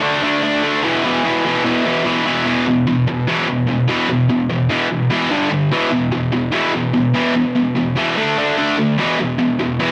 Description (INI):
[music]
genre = rock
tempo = 147 BPM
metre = 4/4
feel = straight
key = E minor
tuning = A4 = 440 Hz
[part]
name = high-gain distorted guitar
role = solo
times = 0.0-9.9 s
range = E2 to D4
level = -17 LUFS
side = equal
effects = distortion, cassette tape
[sound]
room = light reverb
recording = home recording on cassette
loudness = -17 LUFS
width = mono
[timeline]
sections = 0.0-2.5 A section; 2.5-9.9 B section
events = none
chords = 0.0 D5; 0.8 E5; 5.3 G5; 5.7 E5; 8.2 D5; 9.0 E5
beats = 0.03 0.43 | 0.84 1.24 1.65 2.05 | 2.46 2.86 3.27 3.68 | 4.08 4.49 4.90 5.31 | 5.71 6.12 6.53 6.94 | 7.35 7.76 8.16 8.57 | 8.98 9.39 9.80